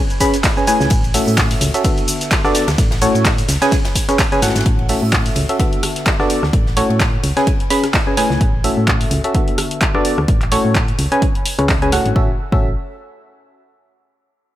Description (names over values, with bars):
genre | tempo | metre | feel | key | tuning
piano house | 128 BPM | 4/4 | swing 56% on 16ths | A major | A4 = 440 Hz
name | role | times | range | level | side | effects
punchy analog drum machine | drums | 0.1-12.1 s | cabasa, handclaps, hi-hat, ride cymbal, rim click | -21 LUFS | equal | none
barking FM electric piano | riff | 0.2-12.7 s | A2 to B5 | -18 LUFS | equal | chorus, sidechain pumping, low-pass filter, dub echo
big rock drum kit | drums | 0.2-8.4 s | hi-hat, ride cymbal, snare drum | -30 LUFS | left 1 dB | high-pass filter on cymbals, high-pass filter on hats, high-pass filter on snare, high-pass filter on room
electronic kick drum | drums | 0.2-12.6 s | none | -18 LUFS | equal | none
solid FM bass | bass | 0.8-12.7 s | G#1 to A2 | -19 LUFS | equal | sidechain pumping
room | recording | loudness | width
studio ambience | none | -13 LUFS | side -13 dB against mid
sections
0.0-4.7 A section; 4.7-12.2 B section; 12.2-14.0 C section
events
drop 0.0-4.7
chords
0.0 C#5; 0.9 A6; 1.8 D6; 2.8 A6; 3.5 C#5; 4.7 A6; 5.6 D6; 6.5 A6; 7.2 C#5; 8.4 A6; 9.3 D6; 10.3 A6; 11.0 C#5; 12.2 A6